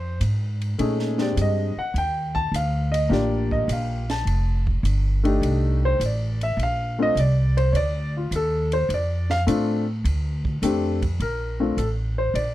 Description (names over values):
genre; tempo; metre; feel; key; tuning
jazz piano trio; 104 BPM; 4/4; swing 69% on 8ths; Bb major; A4 = 439 Hz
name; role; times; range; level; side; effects
warm concert grand piano; melody; 0.0-12.5 s; Ab3 to A5; -24 LUFS; left 1 dB; none
upright bass; bass; 0.0-12.5 s; F1 to Bb2; -23 LUFS; equal; none
compact cocktail drum kit; drums; 0.2-12.5 s; hi-hat, kick drum, ride cymbal, snare drum; -35 LUFS; right 2 dB; none
room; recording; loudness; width
little or no reverb; dark, warm production; -20 LUFS; side -14 dB against mid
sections
0.0-11.2 A section; 11.2-12.5 B section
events
grand piano solo 0.0-11.2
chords
0.0 Fm; 0.8 Bb13; 2.0 Ebmaj9; 4.3 F13; 6.6 Bbmaj9